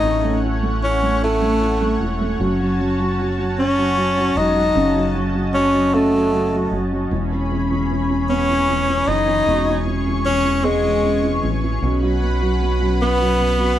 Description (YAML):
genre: six-eight pop ballad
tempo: 51 BPM (dotted quarters)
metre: 6/8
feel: straight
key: E major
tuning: A4 = 439 Hz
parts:
  - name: clear tenor saxophone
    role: melody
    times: 0.0-13.8 s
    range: G#3 to D#4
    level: -18 LUFS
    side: left 1 dB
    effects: none
  - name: felt-muted upright piano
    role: accompaniment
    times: 0.0-13.8 s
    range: B2 to G#4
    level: -22 LUFS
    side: right 2 dB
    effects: none
  - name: lush unison pad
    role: sustained chords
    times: 0.0-13.8 s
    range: A3 to C#6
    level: -24 LUFS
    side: equal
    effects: chorus
  - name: fingered electric bass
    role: bass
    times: 0.0-13.7 s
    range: E1 to B1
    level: -23 LUFS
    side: equal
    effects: none
room: wet small room reverb, RT60 0.5 s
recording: band playing live in one room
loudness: -16 LUFS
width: side -12 dB against mid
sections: 0.0-13.8 A section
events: none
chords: 0.0 Amaj7; 2.4 F#m; 7.1 E6; 11.8 Bsus2